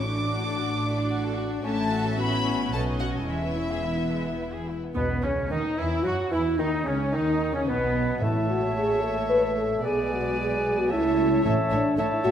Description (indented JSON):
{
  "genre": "quick classical-period movement for symphony orchestra",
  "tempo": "111 BPM",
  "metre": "3/4",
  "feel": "straight",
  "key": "E major",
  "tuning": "A4 = 440 Hz",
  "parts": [
    { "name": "warm chamber violin section", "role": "melody", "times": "0.0-12.3 s", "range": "B3 to D6", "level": "-34 LUFS", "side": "left 2 dB", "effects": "none" },
    { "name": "warm chamber violin section", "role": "second line", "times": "0.0-12.3 s", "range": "G#3 to E5", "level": "-36 LUFS", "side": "left 2 dB", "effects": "none" },
    { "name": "dark chamber viola section", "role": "accompaniment", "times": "0.0-12.3 s", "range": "G#3 to F#4", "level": "-32 LUFS", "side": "right 1 dB", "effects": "none" },
    { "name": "dark French horn section", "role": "sustained chords", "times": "0.0-12.3 s", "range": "E3 to B4", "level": "-27 LUFS", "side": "left 1 dB", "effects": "none" },
    { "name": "dark chamber cello section", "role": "bass", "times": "0.0-12.3 s", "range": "E2 to F#3", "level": "-32 LUFS", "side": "right 1 dB", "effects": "none" },
    { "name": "dark chamber double bass section", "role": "bass", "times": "0.0-12.3 s", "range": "E1 to F#2", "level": "-34 LUFS", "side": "right 2 dB", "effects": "none" },
    { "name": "mellow clarinet", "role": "second line", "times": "5.0-12.3 s", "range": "B3 to C#5", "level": "-36 LUFS", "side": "right 1 dB", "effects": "none" },
    { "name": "silver concert flute", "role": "second line", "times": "5.0-12.3 s", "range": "C#4 to A5", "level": "-32 LUFS", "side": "left 1 dB", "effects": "none" },
    { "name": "warm oboe", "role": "second line", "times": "5.0-12.3 s", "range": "B3 to E5", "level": "-35 LUFS", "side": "right 1 dB", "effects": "none" },
    { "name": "mellow bassoon", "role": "accompaniment", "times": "5.0-12.3 s", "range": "B2 to B3", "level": "-33 LUFS", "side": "right 1 dB", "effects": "none" },
    { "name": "timpani", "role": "percussion", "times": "5.0-5.7, 8.2-9.0, 11.4-12.2 s", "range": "E2 to A2", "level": "-32 LUFS", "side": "equal", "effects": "none" }
  ],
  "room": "wet recital hall reverb, RT60 1.9 s",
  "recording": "none",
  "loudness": "-23 LUFS",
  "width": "side -9 dB against mid",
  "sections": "0.0-5.0 A section; 5.0-12.3 B section",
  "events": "none",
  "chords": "0.0 D/A; 1.6 F#m7/A; 2.7 B7; 3.3 E; 5.0 E5/B; 6.6 C#sus2; 7.7 N.C.; 8.2 A; 9.8 G#dim/B; 10.9 A/C#; 11.4 A"
}